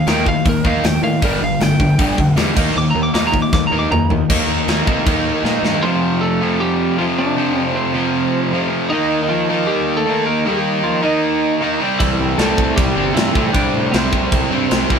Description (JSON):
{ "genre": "punk rock", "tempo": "156 BPM", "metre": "4/4", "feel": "straight", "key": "unclear", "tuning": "A4 = 439 Hz", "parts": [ { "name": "lightly driven lead guitar", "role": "melody", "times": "0.0-14.9 s", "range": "E3 to D6", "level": "-21 LUFS", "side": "right 1 dB", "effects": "none" }, { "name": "cranked stack guitar", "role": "riff", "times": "0.0-15.0 s", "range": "F2 to Eb4", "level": "-17 LUFS", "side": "equal", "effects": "overdrive" }, { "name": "fuzz picked electric bass", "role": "bass", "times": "0.1-5.8, 12.0-15.0 s", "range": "F1 to C3", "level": "-23 LUFS", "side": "right 1 dB", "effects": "overdrive" }, { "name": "tight metal drum kit", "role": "drums", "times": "0.1-5.7, 12.0-15.0 s", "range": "crash cymbal, hi-hat, kick drum, snare drum, toms", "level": "-19 LUFS", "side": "equal", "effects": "none" } ], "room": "moderate studio reverb, RT60 0.7 s", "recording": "band playing live in one room", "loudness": "-14 LUFS", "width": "side -6 dB against mid", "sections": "0.0-4.3 A section; 4.3-5.8 B section; 5.8-15.0 C section", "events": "lead electric guitar solo 0.0-4.3; drum fill 3.5-4.3, 5.5-5.8", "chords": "0.0 Eb5; 1.2 G5; 2.6 Eb5; 5.8 F; 8.9 Eb; 11.8 C" }